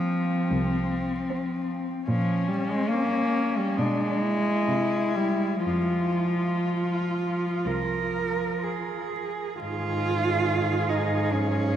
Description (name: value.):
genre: classical, lyrical piece for cello ensemble.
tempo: 59-77 BPM.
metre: 4/4.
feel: rubato.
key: F minor.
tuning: A4 = 440 Hz.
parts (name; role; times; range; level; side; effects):
dark cello; melody; 0.0-11.8 s; C4 to Ab4; -30 LUFS; left 4 dB; none.
dark cello; second line; 0.0-11.8 s; C4 to Bb4; -29 LUFS; right 5 dB; none.
warm cello; accompaniment; 0.0-11.8 s; Eb3 to Bb3; -27 LUFS; equal; none.
dark cello; bass; 0.5-11.8 s; C2 to C3; -30 LUFS; right 1 dB; none.
room: wet cathedral reverb, RT60 5.7 s.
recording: in a vast, echoing space, vinyl crackle.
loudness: -24 LUFS.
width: side -10 dB against mid.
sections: 0.0-9.6 A section; 9.6-11.8 B section.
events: none.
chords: 0.0 F5; 2.1 Bbm; 3.8 Bm6; 4.7 C; 5.7 Fm; 9.6 Ab5.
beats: 0.51 1.30 | 2.09 2.91 3.79 4.68 | 5.66 6.66 7.66 8.63 | 9.60 10.48 11.34.